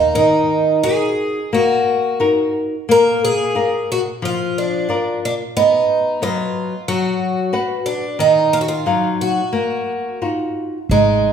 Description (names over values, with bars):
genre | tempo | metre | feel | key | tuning
fado-style ballad | 90 BPM | 4/4 | rubato | Eb harmonic minor | A4 = 440 Hz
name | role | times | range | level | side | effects
picked twelve-string acoustic guitar | melody | 0.0-11.3 s | D4 to Bb4 | -17 LUFS | right 2 dB | none
flamenco guitar | accompaniment | 0.0-11.3 s | Eb3 to F#5 | -19 LUFS | left 3 dB | none
upright bass | bass | 0.0-0.1, 10.9-11.3 s | Ab1 to Eb2 | -20 LUFS | right 1 dB | none
room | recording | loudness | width
wet large studio reverb, RT60 1.3 s | band playing live in one room | -15 LUFS | side -7 dB against mid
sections
0.1-11.3 A section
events
none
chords
0.1 Ebm; 2.9 Bb; 5.5 B; 8.2 Ebmadd9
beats
| 0.15 0.84 1.53 2.20 | 2.88 3.55 4.22 4.88 | 5.54 6.21 6.87 7.52 | 8.19 8.85 9.53 10.21 | 10.91